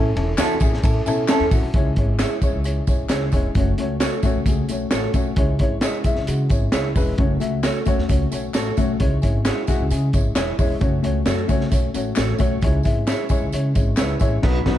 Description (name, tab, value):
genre	uptempo 1960s-style soul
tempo	132 BPM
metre	4/4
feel	straight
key	unclear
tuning	A4 = 439 Hz
part	dark upright piano	accompaniment	0.0-14.8 s	F#3 to E5	-24 LUFS	left 3 dB	none
part	upright bass	bass	0.0-14.8 s	E1 to C#3	-23 LUFS	equal	none
part	crunchy breakbeat drum kit	drums	0.2-14.8 s	crash cymbal, hi-hat, kick drum, ride cymbal, snare drum	-21 LUFS	equal	none
part	electric guitar through a small old amp	stabs	0.4-14.8 s	C#4 to C#5	-27 LUFS	right 4 dB	spring reverb
part	handclaps and tambourine	percussion	0.4-14.3 s	none	-34 LUFS	left 1 dB	none
room	little or no reverb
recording	dark, warm production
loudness	-18 LUFS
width	side -12 dB against mid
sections	0.0-1.7 A section; 1.7-14.8 B section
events	band accent 14.4-14.8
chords	0.0 A; 1.7 C#m; 3.6 F#m; 5.4 C#m; 7.2 F#m; 9.0 C#m; 10.8 F#m; 12.6 C#m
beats	0.38 0.83 1.28 | 1.74 2.19 2.65 3.10 | 3.55 4.01 4.46 4.92 | 5.37 5.83 6.28 6.73 | 7.19 7.64 8.10 8.55 | 9.00 9.46 9.91 10.36 | 10.81 11.27 11.72 12.17 | 12.63 13.08 13.53 13.99 | 14.44